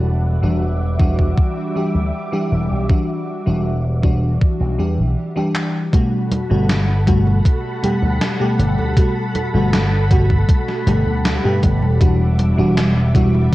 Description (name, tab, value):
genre	vaporwave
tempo	79 BPM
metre	4/4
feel	straight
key	G major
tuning	A4 = 440 Hz
part	FM electric piano with soft pad layer	accompaniment	0.0-13.5 s	B2 to G4	-20 LUFS	equal	analog chorus, tape echo
part	soft string machine	sustained chords	0.0-13.5 s	G3 to D6	-26 LUFS	equal	ensemble chorus, vintage 12-bit sampler grit
part	slap bass with an envelope filter	bass	0.0-13.5 s	E1 to G2	-17 LUFS	equal	none
part	electronic kick drum	drums	1.0-13.5 s	none	-15 LUFS	equal	none
part	gated 80s digital drum machine	drums	5.6-13.5 s	congas, handclaps, hi-hat, snare drum	-23 LUFS	equal	gated reverb, gated reverb snare, low-pass filter on snare, low-pass filter on hats, low-pass filter on perc, low-pass filter on room
room	little or no reverb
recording	cassette tape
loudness	-15 LUFS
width	side -17 dB against mid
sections	0.0-5.9 A section; 5.9-13.5 B section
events	filter sweep on string machine 0.0-5.9; break 5.2-5.9; drum fill 5.6-5.9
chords	0.0 Em9; 5.9 Gmaj9; 12.0 Em9